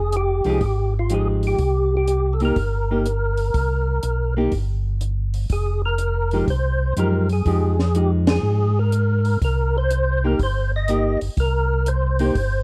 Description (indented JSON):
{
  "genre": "soul jazz organ trio",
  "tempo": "123 BPM",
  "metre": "4/4",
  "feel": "swing 67% on 8ths",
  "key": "C minor",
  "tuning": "A4 = 440 Hz",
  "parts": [
    { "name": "percussive tonewheel organ", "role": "melody", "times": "0.0-12.6 s", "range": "F4 to Eb5", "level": "-26 LUFS", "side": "equal", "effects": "slow rotary speaker, overdrive, chorus vibrato" },
    { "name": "mellow tonewheel organ", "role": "bass", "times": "0.0-12.6 s", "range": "F1 to Ab2", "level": "-23 LUFS", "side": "equal", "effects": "chorus vibrato, slow rotary speaker" },
    { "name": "compact cocktail drum kit", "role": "drums", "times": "0.1-12.5 s", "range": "hi-hat, kick drum, ride cymbal, snare drum", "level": "-27 LUFS", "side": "equal", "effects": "none" },
    { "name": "hollow-body jazz guitar", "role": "accompaniment", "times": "0.5-12.3 s", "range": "F3 to G4", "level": "-26 LUFS", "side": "equal", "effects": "none" }
  ],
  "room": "little or no reverb",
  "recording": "dark, warm production",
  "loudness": "-21 LUFS",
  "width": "mono",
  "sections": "0.0-12.6 A section",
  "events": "band accent 8.2",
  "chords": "0.0 Fm9; 1.6 C7(no3); 5.5 Fm9; 9.4 Cm7"
}